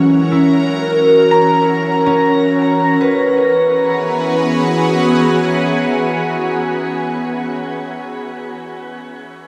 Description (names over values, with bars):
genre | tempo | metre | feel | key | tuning
ambient | free time | none | none | E lydian | A4 = 441 Hz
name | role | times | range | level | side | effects
ethereal airy pad | sustained chords | 0.0-7.2 s | E3 to A#4 | -17 LUFS | equal | ensemble chorus, built-in reverb, phaser
concert harp | arpeggios | 0.0-7.2 s | F#3 to A#5 | -20 LUFS | equal | tape echo
analog drone | drone | 0.0-7.2 s | E3 | -26 LUFS | equal | chorus
room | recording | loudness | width
wet shimmer reverb, RT60 9.6 s | none | -14 LUFS | mono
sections
0.0-3.0 A section; 3.0-6.5 B section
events
none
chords
0.0 F#; 3.0 E6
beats
free time